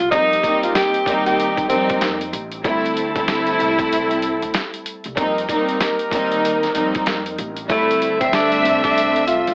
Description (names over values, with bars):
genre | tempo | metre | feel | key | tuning
hip hop, boom-bap hip-hop | 95 BPM | 4/4 | swing 63% on 16ths | D phrygian | A4 = 440 Hz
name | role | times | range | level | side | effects
breathy tenor saxophone | melody | 0.0-2.2, 7.7-9.5 s | A3 to G4 | -21 LUFS | equal | none
upright bass | bass | 0.0-9.5 s | A1 to F2 | -35 LUFS | equal | none
warm studio string section | accompaniment | 0.1-9.5 s | G3 to E5 | -23 LUFS | equal | cassette tape
mellow saxophone section | stabs | 0.1-9.5 s | A3 to E5 | -27 LUFS | equal | tape echo
boom bap sampler-style drum kit | drums | 0.1-9.5 s | hi-hat, kick drum, snare drum | -27 LUFS | equal | none
room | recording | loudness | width
light reverb | vinyl crackle, AM radio sound | -19 LUFS | mono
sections
0.0-9.5 A section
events
none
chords
0.1 F9sus4; 2.6 D9sus4; 5.2 F9sus4; 7.7 D9sus4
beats
| 0.12 0.75 1.38 2.01 | 2.64 3.27 3.91 4.54 | 5.17 5.80 6.43 7.06 | 7.70 8.33 8.96